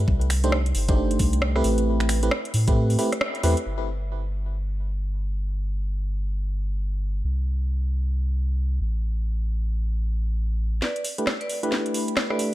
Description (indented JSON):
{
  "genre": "UK garage, two-step garage",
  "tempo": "134 BPM",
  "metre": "4/4",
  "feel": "swing 61% on 16ths",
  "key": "G major",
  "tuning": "A4 = 439 Hz",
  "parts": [
    { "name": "soft dub sub bass", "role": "bass", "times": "0.0-10.8 s", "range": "G1 to A2", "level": "-24 LUFS", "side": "equal", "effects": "none" },
    { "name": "electronic kick drum", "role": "drums", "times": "0.1-2.7, 10.8-12.3 s", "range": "none", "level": "-23 LUFS", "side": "equal", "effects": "high-pass filter on kick, studio reverb" },
    { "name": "garage drum kit", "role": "drums", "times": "0.2-3.8, 10.8-12.5 s", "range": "crash cymbal, finger snaps, hi-hat, rim click, snare drum", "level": "-27 LUFS", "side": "equal", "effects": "low-pass filter on hats, studio reverb, low-pass filter on snare, low-pass filter on cymbals" },
    { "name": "FM electric piano", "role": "stabs", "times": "0.4-3.5, 11.2-12.5 s", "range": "A3 to C5", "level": "-26 LUFS", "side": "right 1 dB", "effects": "chorus, low-pass filter, ping-pong delay" },
    { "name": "vibraphone with hard mallets", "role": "melody", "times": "10.8-12.5 s", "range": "B4 to D5", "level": "-32 LUFS", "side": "right 1 dB", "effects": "ping-pong delay" }
  ],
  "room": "digital ambience",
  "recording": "none",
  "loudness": "-22 LUFS",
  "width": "side -15 dB against mid",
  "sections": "0.0-3.7 A section; 3.7-10.8 B section; 10.8-12.5 C section",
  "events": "kick drops out 2.8-3.7; band accent 3.2; filter sweep on drum 3.7-10.8; build-up 10.8-12.5; drum fill 10.8-12.5; filter sweep on FM electric piano 10.8-12.5",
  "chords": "0.1 Cm6; 1.6 Am7; 3.7 N.C.; 10.8 G69"
}